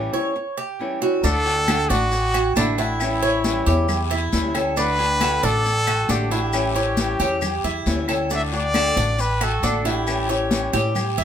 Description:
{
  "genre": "latin, Cuban son and guajira",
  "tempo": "136 BPM",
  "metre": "4/4",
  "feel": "straight",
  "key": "D major",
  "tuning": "A4 = 439 Hz",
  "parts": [
    { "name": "flamenco guitar", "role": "accompaniment", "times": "0.0-11.0 s", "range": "D3 to F#4", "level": "-25 LUFS", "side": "left 4 dB", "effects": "none" },
    { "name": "Cuban tres", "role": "arpeggios", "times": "0.0-11.2 s", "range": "D4 to D5", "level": "-25 LUFS", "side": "right 4 dB", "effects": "none" },
    { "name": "upright bass", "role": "bass", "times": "0.0-11.2 s", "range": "A1 to A2", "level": "-25 LUFS", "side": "equal", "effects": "none" },
    { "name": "breathy trumpet", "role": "melody", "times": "1.2-11.2 s", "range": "E4 to E5", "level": "-24 LUFS", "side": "left 1 dB", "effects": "none" },
    { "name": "congas", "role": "percussion", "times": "1.2-11.2 s", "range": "none", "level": "-27 LUFS", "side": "left 2 dB", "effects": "none" },
    { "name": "guiro", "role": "percussion", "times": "1.2-11.2 s", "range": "none", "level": "-35 LUFS", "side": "left 8 dB", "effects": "none" },
    { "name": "maracas", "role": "percussion", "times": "1.2-11.2 s", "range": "none", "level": "-35 LUFS", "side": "left 3 dB", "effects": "none" },
    { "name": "agogo bells and timbales", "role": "percussion", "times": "1.5-11.2 s", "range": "none", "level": "-30 LUFS", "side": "right 2 dB", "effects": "none" },
    { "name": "claves", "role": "percussion", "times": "1.7-11.2 s", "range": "none", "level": "-32 LUFS", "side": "left 10 dB", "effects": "none" }
  ],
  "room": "moderate studio ambience, RT60 0.5 s",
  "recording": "minimal, uncompressed stereo recording",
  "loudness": "-18 LUFS",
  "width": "side -9 dB against mid",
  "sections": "0.0-1.2 A section; 1.2-11.2 B section",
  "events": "break 0.0-1.2",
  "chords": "0.0 A7 (rootless); 1.2 D; 3.0 A7; 4.8 D; 6.5 A7; 8.3 D; 10.1 A7"
}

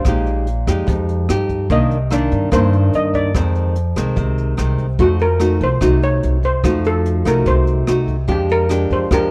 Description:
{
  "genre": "bossa nova",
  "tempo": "146 BPM",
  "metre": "4/4",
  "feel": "straight",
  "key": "unclear",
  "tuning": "A4 = 436 Hz",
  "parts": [
    { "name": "steel pan", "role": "melody", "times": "0.0-9.3 s", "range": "Gb4 to Eb5", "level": "-23 LUFS", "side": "equal", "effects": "none" },
    { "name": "nylon-string guitar", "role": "accompaniment", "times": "0.0-9.3 s", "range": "F2 to G4", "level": "-22 LUFS", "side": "equal", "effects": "none" },
    { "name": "upright bass", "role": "bass", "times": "0.0-9.3 s", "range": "Bb1 to G2", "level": "-20 LUFS", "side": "equal", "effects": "none" },
    { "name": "jazz brush drum kit", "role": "drums", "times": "0.0-9.2 s", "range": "hi-hat, kick drum, rim click", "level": "-26 LUFS", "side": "equal", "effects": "none" }
  ],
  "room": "little or no reverb",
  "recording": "dark, warm production",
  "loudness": "-17 LUFS",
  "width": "mono",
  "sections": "0.0-9.3 A section",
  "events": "none",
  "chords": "0.1 Bb7sus4; 1.7 Cm9; 3.3 Fm7; 5.0 F7b9; 8.3 Bb6/F"
}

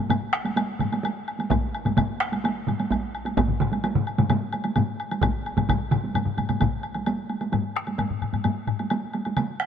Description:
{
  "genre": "japanese traditional, taiko drum ensemble",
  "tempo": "130 BPM",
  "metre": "4/4",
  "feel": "straight",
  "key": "none",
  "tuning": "none",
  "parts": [
    { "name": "solo taiko drums", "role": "percussion", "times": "0.1-9.7 s", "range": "none", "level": "-28 LUFS", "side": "right 6 dB", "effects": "none" },
    { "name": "taiko ensemble", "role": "percussion", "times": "0.1-9.5 s", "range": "none", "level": "-27 LUFS", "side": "right 4 dB", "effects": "none" },
    { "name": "taiko ensemble", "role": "percussion", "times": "0.1-8.8 s", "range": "none", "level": "-28 LUFS", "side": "left 6 dB", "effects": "none" },
    { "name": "woodblock", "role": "percussion", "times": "0.1-9.7 s", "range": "none", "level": "-32 LUFS", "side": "left 2 dB", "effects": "none" },
    { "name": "taiko ensemble", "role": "percussion", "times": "1.5-6.7 s", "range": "none", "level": "-30 LUFS", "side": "left 1 dB", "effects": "none" }
  ],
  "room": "light reverb",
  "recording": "nothing above 10.6 kHz",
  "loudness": "-23 LUFS",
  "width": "side -8 dB against mid",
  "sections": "0.0-7.1 A section; 7.1-9.7 B section",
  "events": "speeding up 0.0-9.7",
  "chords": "none"
}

